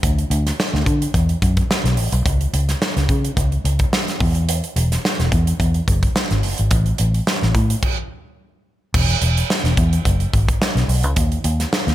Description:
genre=polished 1980s jazz-funk pop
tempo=108 BPM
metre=4/4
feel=swing 54% on 16ths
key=A major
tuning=A4 = 440 Hz
part: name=vintage muted fingered electric bass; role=bass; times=0.0-11.9 s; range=E1 to D3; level=-18 LUFS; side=equal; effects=none
part: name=modern studio drum kit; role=drums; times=0.0-11.9 s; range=crash cymbal, hi-hat, kick drum, snare drum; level=-19 LUFS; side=equal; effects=none
room=light reverb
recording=none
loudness=-16 LUFS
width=side -14 dB against mid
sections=0.0-8.9 A section; 8.9-11.9 A section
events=stop 7.8-8.9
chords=none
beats=| 0.03 0.58 1.14 1.70 | 2.25 2.81 3.37 3.92 | 4.48 5.04 5.60 6.15 | 6.71 7.27 7.83 8.38 | 8.94 9.50 10.05 10.61 | 11.17 11.72

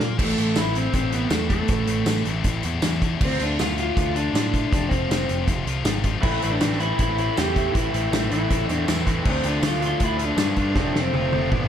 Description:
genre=indie rock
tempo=159 BPM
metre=4/4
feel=straight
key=A minor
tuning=A4 = 440 Hz
part: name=electric guitar through a small old amp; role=melody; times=0.0-11.5 s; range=A3 to C6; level=-25 LUFS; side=equal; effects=slapback echo
part: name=raw garage guitar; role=riff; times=0.0, 6.2-11.7 s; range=E3 to D4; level=-30 LUFS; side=right 7 dB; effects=overdrive, wide subtle chorus, slapback echo
part: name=scooped high-gain guitar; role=riff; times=0.0-11.7 s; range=F2 to G4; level=-28 LUFS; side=left 8 dB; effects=distortion
part: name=fuzz picked electric bass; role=bass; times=0.0-11.7 s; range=F1 to Bb2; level=-26 LUFS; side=equal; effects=overdrive
part: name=loose indie drum kit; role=drums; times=0.0-11.6 s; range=crash cymbal, hi-hat, kick drum, snare drum, tambourine, toms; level=-25 LUFS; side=equal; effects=none
room=light reverb, small room ambience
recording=dark, warm production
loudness=-20 LUFS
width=side -9 dB against mid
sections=0.2-11.7 A section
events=drum fill 0.0, 10.8-11.7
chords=0.2 Am; 3.2 Dm; 4.7 F; 6.2 Am; 9.3 Dm; 10.8 F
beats=| 0.18 0.56 0.94 1.32 | 1.70 2.08 2.45 2.83 | 3.21 3.59 3.96 4.34 | 4.72 5.10 5.48 5.86 | 6.23 6.61 6.99 7.37 | 7.75 8.12 8.50 8.88 | 9.26 9.63 10.01 10.39 | 10.77 11.15 11.53

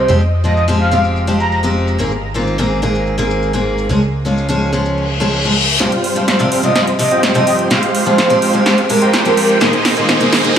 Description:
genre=EDM, festival progressive house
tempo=126 BPM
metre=4/4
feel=straight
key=F minor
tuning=A4 = 439 Hz
part: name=breathy flute-like synth lead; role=melody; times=0.0-1.6, 6.6-9.7 s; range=Bb4 to Bb5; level=-18 LUFS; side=right 1 dB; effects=ensemble chorus, cassette tape, dub echo
part: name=picked steel-string acoustic guitar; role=accompaniment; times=0.0-10.6 s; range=Ab2 to Ab4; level=-17 LUFS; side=left 1 dB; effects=dub echo
part: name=fat analog bass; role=bass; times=0.0-5.8 s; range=F1 to Db2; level=-18 LUFS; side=equal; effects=tube saturation
part: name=big-room dance drum kit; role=drums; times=0.1-10.6 s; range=hi-hat, shaker, snare drum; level=-17 LUFS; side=right 1 dB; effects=low-pass filter on perc, studio reverb, low-pass filter on snare, low-pass filter on hats
part: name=reverse cymbal and riser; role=sound effects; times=5.0-10.6 s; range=none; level=-21 LUFS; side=left 2 dB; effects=none
part: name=dense compressed supersaw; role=riff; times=5.8-10.6 s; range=G3 to G5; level=-16 LUFS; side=right 1 dB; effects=low-pass filter, dub echo
room=light reverb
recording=high-pass filter, studio reverb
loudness=-12 LUFS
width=side -8 dB against mid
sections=0.0-5.8 A section; 5.8-10.6 B section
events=reverse cymbal 5.0-5.8; build-up 5.8-10.6; drum fill 5.8-10.6; riser 5.8-10.6; filter sweep on supersaw synth 5.8-10.6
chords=0.1 Fmadd9; 2.0 Abadd9; 3.9 Db; 5.8 Csus4; 7.7 Fmadd9; 9.6 Abadd9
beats=| 0.09 0.56 1.04 1.52 | 1.99 2.47 2.94 3.42 | 3.90 4.37 4.85 5.33 | 5.80 6.28 6.75 7.23 | 7.71 8.18 8.66 9.14 | 9.61 10.09 10.56

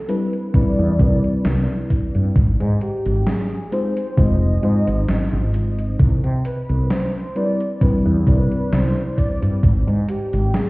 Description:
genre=vaporwave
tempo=66 BPM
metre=4/4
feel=swing 54% on 16ths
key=C major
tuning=A4 = 436 Hz
part: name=warm velvety synth lead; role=melody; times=0.0-10.7 s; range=G4 to Eb5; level=-28 LUFS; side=equal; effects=chorus, tape echo
part: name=mellow FM electric piano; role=accompaniment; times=0.1-9.6 s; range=G3 to D5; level=-23 LUFS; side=left 1 dB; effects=analog chorus, analog delay
part: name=gated 80s digital drum machine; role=drums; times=0.1-10.7 s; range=hi-hat, snare drum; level=-24 LUFS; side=equal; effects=gated reverb, gated reverb snare, overdrive
part: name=woody fretless electric bass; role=bass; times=0.5-10.5 s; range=F1 to C3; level=-18 LUFS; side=equal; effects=lush chorus
part: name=electronic kick drum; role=drums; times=0.5-9.8 s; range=none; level=-16 LUFS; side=equal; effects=overdrive
room=light reverb, digital ambience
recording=heard muffled through a wall, stone room reverb, cassette tape, EQ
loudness=-16 LUFS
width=side -22 dB against mid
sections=0.0-10.7 A section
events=none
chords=0.0 Cmaj9; 2.4 Ab6; 6.0 Cmaj9; 9.6 N.C.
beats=0.54 1.45 | 2.36 3.27 4.18 5.09 | 6.00 6.91 7.81 8.72 | 9.63 10.54

